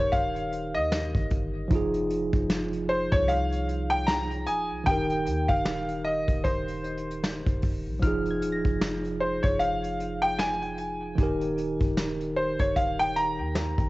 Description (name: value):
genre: contemporary R&B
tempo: 76 BPM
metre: 4/4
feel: swing 58% on 16ths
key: F minor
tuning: A4 = 440 Hz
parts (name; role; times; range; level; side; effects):
- clear grand piano; melody; 0.0-13.9 s; C5 to Bb5; -27 LUFS; equal; cassette tape, tape echo
- tine electric piano; accompaniment; 0.0-13.9 s; Eb3 to Bb4; -30 LUFS; right 1 dB; slow stereo tremolo, cassette tape
- clean 808-style bass; bass; 0.0-13.9 s; Eb1 to Eb2; -34 LUFS; equal; none
- soft round pluck; texture; 0.0-10.6 s; C6 to Bb6; -39 LUFS; left 1 dB; chorus, cassette tape, tape echo
- vintage brush drum kit; drums; 0.1-13.9 s; hi-hat, kick drum, snare drum; -28 LUFS; equal; vintage 12-bit sampler grit, cassette tape
room: light reverb, small room ambience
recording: home recording on cassette, nothing above 7.9 kHz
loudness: -24 LUFS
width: side -20 dB against mid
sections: 0.0-13.9 A section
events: none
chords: 0.0 Cm7/Eb; 1.7 Fm7; 4.9 Cm7/Eb; 8.0 Fm7; 11.2 Eb